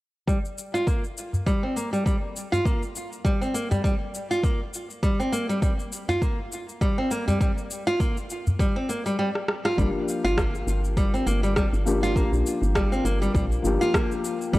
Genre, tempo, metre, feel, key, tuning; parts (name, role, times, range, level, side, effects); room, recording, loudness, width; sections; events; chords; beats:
organic downtempo; 101 BPM; 4/4; swing 56% on 16ths; G minor pentatonic; A4 = 441 Hz
nylon-string guitar; arpeggios; 0.3-14.6 s; G3 to F4; -26 LUFS; equal; low-pass filter, tape echo
electronic cabasa and rim click; drums; 0.3-14.6 s; -32 LUFS; equal; overdrive, studio reverb
electronic kick drum; drums; 0.3-14.6 s; -25 LUFS; equal; overdrive, studio reverb
udu; percussion; 1.3-8.6 s; -26 LUFS; equal
felt-muted upright piano; accompaniment; 9.8-14.6 s; F3 to G4; -28 LUFS; left 3 dB; vintage 12-bit sampler grit, sidechain pumping, tape echo
woody FM bass; bass; 9.8-14.6 s; G1 to Bb1; -25 LUFS; equal; sidechain pumping
light reverb, small room ambience; dry, gritty hardware recording, cassette tape; -22 LUFS; side -18 dB against mid
0.3-9.8 A section; 9.8-14.6 B section
drum fill 9.3-9.8
0.3 Gm7
| 0.28 0.87 1.47 2.06 | 2.65 3.25 3.84 4.44 | 5.03 5.62 6.22 6.81 | 7.41 8.00 8.60 9.19 | 9.78 10.38 10.97 11.56 | 12.16 12.75 13.35 13.94 | 14.54